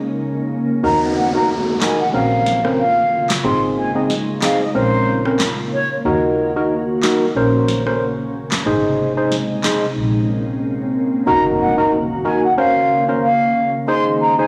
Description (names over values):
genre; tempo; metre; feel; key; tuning
dancehall; 92 BPM; 4/4; swing 56% on 16ths; Bb minor; A4 = 439 Hz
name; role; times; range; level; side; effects
glassy FM pad; sustained chords; 0.0-14.5 s; C3 to Gb4; -25 LUFS; equal; ensemble chorus, built-in reverb
mellow concert flute; melody; 0.8-5.9, 11.3-14.5 s; C5 to C6; -21 LUFS; equal; tape echo
percussive organ stab; accompaniment; 0.8-14.5 s; C4 to C5; -21 LUFS; equal; chorus
warm double bass; bass; 0.8-11.2 s; Ab1 to Eb2; -27 LUFS; equal; none
downlifter and impact; sound effects; 0.8-6.1, 11.3-13.9 s; none; -32 LUFS; equal; none
electronic handclaps, snare drum and rim click; drums; 1.8-9.8 s; none; -26 LUFS; equal; none
room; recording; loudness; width
moderate lush hall reverb, RT60 2.6 s; blown-out, overdriven recording, overdrive, studio reverb; -17 LUFS; mono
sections
0.8-11.3 A section; 11.3-14.5 B section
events
break 0.0-0.8; silent gap 10.0-11.3; impact 11.3-13.9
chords
0.0 Bbm; 0.8 Ebm; 2.1 Bbmadd9; 3.4 Ab; 4.8 Bbmadd9; 6.1 Ebm; 7.4 Bbmadd9; 8.7 Ab; 10.0 Bbmadd9; 11.3 Ebm; 12.6 Bbmadd9; 13.9 Ab